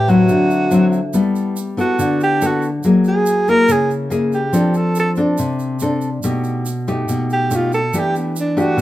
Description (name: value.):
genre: bossa nova.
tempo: 141 BPM.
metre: 4/4.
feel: straight.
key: G major.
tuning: A4 = 440 Hz.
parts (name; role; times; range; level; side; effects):
breathy alto saxophone; melody; 0.0-8.8 s; B3 to A#4; -17 LUFS; right 1 dB; plate reverb.
nylon-string guitar; accompaniment; 0.0-8.8 s; A2 to A4; -16 LUFS; left 1 dB; none.
vibraphone with soft mallets; accompaniment; 0.0-1.2 s; A3 to E5; -26 LUFS; right 2 dB; none.
egg shaker; percussion; 0.1-8.8 s; none; -34 LUFS; right 6 dB; none.
room: moderate studio ambience, RT60 0.5 s.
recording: dark, warm production.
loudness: -14 LUFS.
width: side -14 dB against mid.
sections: 0.0-1.1 A section; 1.1-8.8 B section.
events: alto saxophone solo 1.1-8.8.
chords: 0.3 D9; 1.1 G69; 2.8 F#9; 4.5 F6; 6.2 Baug7; 7.9 Em7.